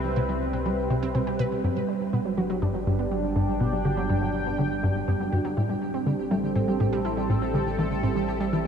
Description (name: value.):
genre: ambient, sequencer-driven space music.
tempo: 122 BPM.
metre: 4/4.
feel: straight.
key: unclear.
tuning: A4 = 441 Hz.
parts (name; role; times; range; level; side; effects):
sweeping resonant pad; sustained chords; 0.0-8.7 s; G3 to G5; -28 LUFS; right 1 dB; chorus.
wide unison pluck; arpeggios; 0.0-8.7 s; F#3 to B4; -31 LUFS; moving between left 1 dB and right 6 dB; auto-pan, tape echo.
tight sequencer bass; riff; 0.0-8.7 s; G2 to G3; -27 LUFS; left 1 dB; lush chorus, tape echo.
analog drone; bass; 0.0-8.7 s; G1 to C2; -35 LUFS; left 1 dB; chorus, phaser.
pulsing gated texture; texture; 0.0-8.7 s; G4 to G5; -43 LUFS; left 1 dB; chorus, built-in reverb.
room: wet huge ambient reverb, RT60 8.4 s.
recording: dark, warm production.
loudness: -23 LUFS.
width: side -7 dB against mid.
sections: 0.0-8.7 A section.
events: none.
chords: 0.0 Cmaj7; 1.6 Gmaj7; 5.6 Am7.